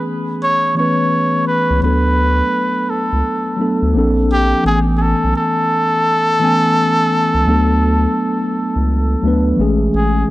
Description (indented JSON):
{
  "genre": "lo-fi hip hop",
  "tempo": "85 BPM",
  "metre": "4/4",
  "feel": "swing 65% on 16ths",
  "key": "A major",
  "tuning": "A4 = 440 Hz",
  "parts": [
    { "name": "trumpet with cup mute", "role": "melody", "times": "0.0-10.3 s", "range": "G4 to C#5", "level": "-17 LUFS", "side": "equal", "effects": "none" },
    { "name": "mellow tine electric piano", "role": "accompaniment", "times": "0.0-10.3 s", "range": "E3 to G#5", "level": "-17 LUFS", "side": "left 1 dB", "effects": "slow stereo tremolo, cassette tape" },
    { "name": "round analog bass", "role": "bass", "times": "1.7-10.2 s", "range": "A1 to D2", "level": "-16 LUFS", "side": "equal", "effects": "none" }
  ],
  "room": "light reverb, small room ambience",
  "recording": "none",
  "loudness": "-13 LUFS",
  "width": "side -17 dB against mid",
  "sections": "0.0-10.3 A section",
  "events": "none",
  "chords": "0.0 Amaj9; 1.8 D6; 3.9 Bbmaj9; 4.6 Amaj9; 7.5 D6; 9.6 Amaj7"
}